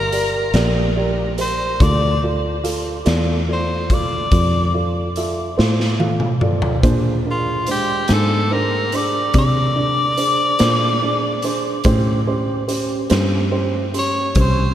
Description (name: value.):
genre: slow blues.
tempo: 48 BPM (dotted quarters).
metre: 12/8.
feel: straight.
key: D minor.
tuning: A4 = 440 Hz.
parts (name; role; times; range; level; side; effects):
bright tenor saxophone; melody; 0.0-14.7 s; F4 to D5; -22 LUFS; left 1 dB; none.
fingered electric bass; bass; 0.0-14.7 s; G1 to C3; -20 LUFS; equal; none.
dark upright piano; accompaniment; 0.1-14.7 s; Ab3 to B#5; -23 LUFS; right 3 dB; none.
raw garage drum kit; drums; 0.1-14.6 s; hi-hat, kick drum, snare drum, toms; -22 LUFS; equal; none.
room: moderate huge ambient reverb, RT60 7.7 s.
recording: dreamy mix soaked in reverb.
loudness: -16 LUFS.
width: side -11 dB against mid.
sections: 0.0-14.7 A section.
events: drum fill 5.6-6.8.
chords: 0.0 Gm; 1.8 Dm; 6.8 Bb7; 11.9 A7#9.